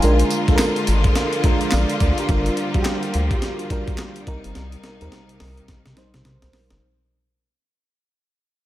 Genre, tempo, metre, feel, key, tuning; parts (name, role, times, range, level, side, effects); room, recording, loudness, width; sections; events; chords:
R&B, new jack swing; 106 BPM; 4/4; swing 61% on 16ths; A4 = 440 Hz
FM electric piano with soft pad layer; accompaniment; 0.0-6.8 s; G3 to Ab5; -23 LUFS; right 1 dB; chorus
clear studio string section; sustained chords; 0.0-6.8 s; C3 to F4; -27 LUFS; left 1 dB
round analog bass; bass; 0.0-6.8 s; G1 to C3; -20 LUFS; equal
breakbeat sampler-style drum kit; drums; 0.0-6.8 s; handclaps, hi-hat, kick drum, snare drum, tambourine; -22 LUFS; equal
little or no reverb; -18 LUFS; side -14 dB against mid
0.0-6.8 A section
fade-out 0.0-6.8; drum fill 4.6-6.8
0.0 Bb7; 2.3 Gm7; 4.3 Cm7